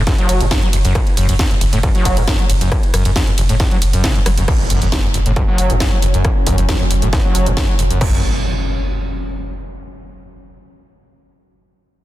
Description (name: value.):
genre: driving peak-time techno.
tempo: 136 BPM.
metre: 4/4.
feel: straight.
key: unclear.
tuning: A4 = 439 Hz.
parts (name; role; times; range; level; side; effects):
screaming distorted acid line; riff; 0.0-8.2 s; F#1 to F#3; -20 LUFS; equal; distortion, lush chorus, sidechain pumping, tape echo.
warm sub bass; bass; 0.0-8.2 s; F#1; -18 LUFS; equal; overdrive, sidechain pumping, low-pass filter.
techno drum kit; drums; 0.1-8.1 s; crash cymbal, kick drum; -17 LUFS; equal; distortion, overdrive.
techno drum kit; drums; 0.1-8.0 s; crash cymbal, hi-hat, ride cymbal, rim click, snare drum; -22 LUFS; right 1 dB; overdrive, sidechain pumping on hats, sidechain pumping on cymbals.
deep dark ambient pad; drone; 5.2-8.1 s; F#3 to C#4; -27 LUFS; equal; chorus, built-in reverb, sidechain pumping.
impact; sound effects; 4.5-9.8 s; none; -23 LUFS; equal; none.
room: digital ambience.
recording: dense, heavily limited modern master.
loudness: -13 LUFS.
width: side -15 dB against mid.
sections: 0.0-4.5 A section; 4.5-8.0 B section; 8.0-9.8 C section.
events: drop 0.0-4.5; impact 4.5-6.2.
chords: 0.0 N.C.; 4.5 F#5; 8.0 N.C..